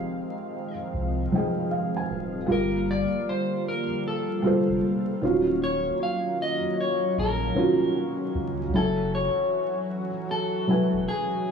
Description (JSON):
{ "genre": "lo-fi hip hop", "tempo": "77 BPM", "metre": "4/4", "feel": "swing 64% on 16ths", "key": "unclear", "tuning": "A4 = 440 Hz", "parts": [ { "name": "electric guitar at the edge of break-up", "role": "melody", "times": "0.0-11.5 s", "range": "G#4 to F5", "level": "-29 LUFS", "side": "left 3 dB", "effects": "spring reverb, low-pass filter, tape echo" }, { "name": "felt-muted upright piano", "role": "accompaniment", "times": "0.0-11.5 s", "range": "Eb3 to Ab5", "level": "-26 LUFS", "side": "right 1 dB", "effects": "low-pass filter" }, { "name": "lush unison pad", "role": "sustained chords", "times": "0.0-11.5 s", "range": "D3 to F5", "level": "-32 LUFS", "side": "equal", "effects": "chorus, phaser, low-pass filter" }, { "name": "warm sub bass", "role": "bass", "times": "0.9-11.1 s", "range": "D1 to Db2", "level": "-32 LUFS", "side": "equal", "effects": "none" } ], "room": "wet small room ambience, RT60 0.5 s", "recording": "vinyl crackle, small room reverb", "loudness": "-23 LUFS", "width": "side -6 dB against mid", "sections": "0.0-11.5 A section", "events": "none", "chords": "0.0 Fm9; 2.5 Gm9; 5.2 Ebm9; 8.7 F#m9" }